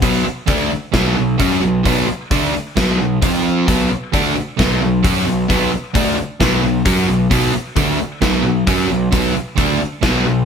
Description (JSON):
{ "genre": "hard rock", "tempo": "132 BPM", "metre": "4/4", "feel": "straight", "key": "unclear", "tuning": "A4 = 440 Hz", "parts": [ { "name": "sludgy distorted guitar", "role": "riff", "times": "0.0-10.4 s", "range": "B2 to F#4", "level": "-20 LUFS", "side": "left 8 dB", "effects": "overdrive" }, { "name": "sludgy distorted guitar", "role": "riff", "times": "0.0-10.4 s", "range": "B2 to F#4", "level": "-19 LUFS", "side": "right 7 dB", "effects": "overdrive" }, { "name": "fuzz picked electric bass", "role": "bass", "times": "0.0-10.4 s", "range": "B1 to F#2", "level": "-22 LUFS", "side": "equal", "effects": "overdrive" }, { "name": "gated 80s drum kit", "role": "drums", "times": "0.0-10.1 s", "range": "hi-hat, kick drum, snare drum", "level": "-19 LUFS", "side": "equal", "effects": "none" } ], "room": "moderate large studio reverb, RT60 0.9 s", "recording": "band playing live in one room", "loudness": "-14 LUFS", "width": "side -7 dB against mid", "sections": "0.0-10.4 A section", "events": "none", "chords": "0.0 B5; 3.2 F5; 3.7 B5" }